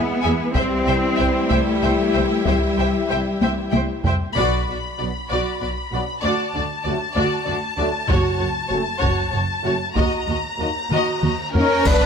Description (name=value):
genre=cinematic, epic orchestral film score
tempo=64 BPM (dotted quarters)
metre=6/8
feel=straight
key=B minor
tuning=A4 = 439 Hz
part: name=clear trombone section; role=sustained chords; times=0.0-12.1 s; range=D3 to B3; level=-30 LUFS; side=right 3 dB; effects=none
part: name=mellow French horn section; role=sustained chords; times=0.0-12.1 s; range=A#3 to D5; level=-26 LUFS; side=left 6 dB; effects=none
part: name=warm symphonic string section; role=sustained chords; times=0.0-4.4, 11.9-12.1 s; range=G3 to F#5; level=-28 LUFS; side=left 1 dB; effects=none
part: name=rich symphonic cello section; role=bass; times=0.0-12.1 s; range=D#2 to D4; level=-26 LUFS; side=equal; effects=none
part: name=warm symphonic violin section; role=melody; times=0.2-12.1 s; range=A#4 to B5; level=-27 LUFS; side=left 4 dB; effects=none
part: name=warm symphonic violin section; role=second line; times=0.2-12.1 s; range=A#4 to E5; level=-27 LUFS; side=left 5 dB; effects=none
part: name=rich studio viola section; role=accompaniment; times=0.2-12.1 s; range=C#4 to C5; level=-27 LUFS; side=right 2 dB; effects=none
part: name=rich symphonic double bass section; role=bass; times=0.2-12.1 s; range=F#1 to E2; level=-26 LUFS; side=right 2 dB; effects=none
part: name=taiko ensemble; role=drums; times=0.5-12.1 s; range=none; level=-23 LUFS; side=equal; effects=none
part: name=cymbal swell, clash cymbals and concert bass drum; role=percussion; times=8.1-12.1 s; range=none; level=-29 LUFS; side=equal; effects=none
part: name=timpani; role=percussion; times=8.1-9.0 s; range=F#2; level=-28 LUFS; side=left 1 dB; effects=none
part: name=reverse cymbal and impact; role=sound effects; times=11.5-12.1 s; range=none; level=-32 LUFS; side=right 1 dB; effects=none
part: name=bright concert flute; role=second line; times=11.5-12.1 s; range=A#4 to B4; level=-24 LUFS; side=left 1 dB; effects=none
part: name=clear trumpet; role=stabs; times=11.5-12.1 s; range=A#4 to B4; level=-23 LUFS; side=right 1 dB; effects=none
room=light reverb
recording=close, detailed microphones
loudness=-18 LUFS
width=side -6 dB against mid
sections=0.0-4.4 A section; 4.4-11.9 B section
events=drum fill 3.4-4.4, 10.9-11.9; band accent 4.4-5.0, 11.9; reverse cymbal 11.5-11.9; impact 11.9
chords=0.0 E; 0.6 C; 4.4 Bm; 6.2 D; 8.1 F#m; 10.0 D#m